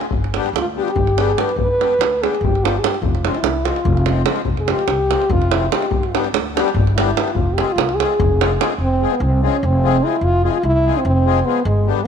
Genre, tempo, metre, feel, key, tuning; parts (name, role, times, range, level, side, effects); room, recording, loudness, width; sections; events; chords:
balkan folk, Balkan wedding band; 292 BPM (eighths); 7/8; straight; F hungarian minor; A4 = 440 Hz
accordion; accompaniment; 0.0-12.0 s; D3 to Ab4; -24 LUFS; left 10 dB; light tremolo tuning
davul; percussion; 0.0-8.7 s; -20 LUFS; right 2 dB
upright bass; bass; 0.1-11.9 s; F1 to D2; -20 LUFS; equal
mellow French horn; melody; 0.6-12.1 s; G3 to B4; -20 LUFS; equal
light reverb, small room ambience; 1960s-style stereo; -15 LUFS; side -7 dB against mid
0.0-8.8 A section; 8.8-12.1 B section
French horn solo 0.0-8.8
0.1 G; 3.0 Fm; 5.9 G; 7.4 Fm